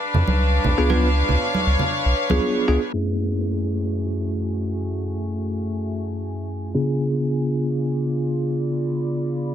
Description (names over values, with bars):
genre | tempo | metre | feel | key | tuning
deep house | 118 BPM | 4/4 | swing 54% on 16ths | F# minor | A4 = 440 Hz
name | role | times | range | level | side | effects
rich chamber string section | texture | 0.0-9.5 s | A3 to B5 | -26 LUFS | left 1 dB | none
warm sub bass | bass | 0.1-2.8 s | B1 to E#2 | -19 LUFS | equal | none
congas | percussion | 0.1-2.4 s | none | -26 LUFS | right 3 dB | none
bell-like tine electric piano | stabs | 0.8-9.5 s | F#2 to B4 | -23 LUFS | equal | medium stereo tremolo, low-pass filter, tape echo
downlifter | sound effects | 2.9-7.0 s | none | -38 LUFS | left 3 dB | none
room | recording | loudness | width
light reverb, small room ambience | dense, heavily limited modern master, low-pass filter | -20 LUFS | side -10 dB against mid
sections
0.0-2.9 A section; 2.9-9.5 B section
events
filter sweep on tine electric piano 2.9-9.5; filter sweep 2.9-9.5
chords
0.0 C#7b9; 2.9 F#m9; 6.7 C#7b9